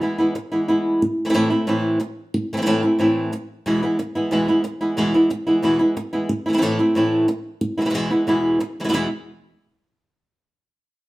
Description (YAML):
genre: flamenco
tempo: 182 BPM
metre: 4/4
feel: straight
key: E major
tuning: A4 = 440 Hz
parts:
  - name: flamenco guitar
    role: melody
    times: 0.0-9.1 s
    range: E2 to E4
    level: -18 LUFS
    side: equal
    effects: none
room: moderate large studio reverb, RT60 0.9 s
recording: band playing live in one room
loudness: -18 LUFS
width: side -18 dB against mid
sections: 0.0-8.9 A section; 8.9-10.3 B section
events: none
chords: 0.0 E; 1.0 Am; 3.7 E; 6.3 Am; 7.6 E; 8.9 N.C.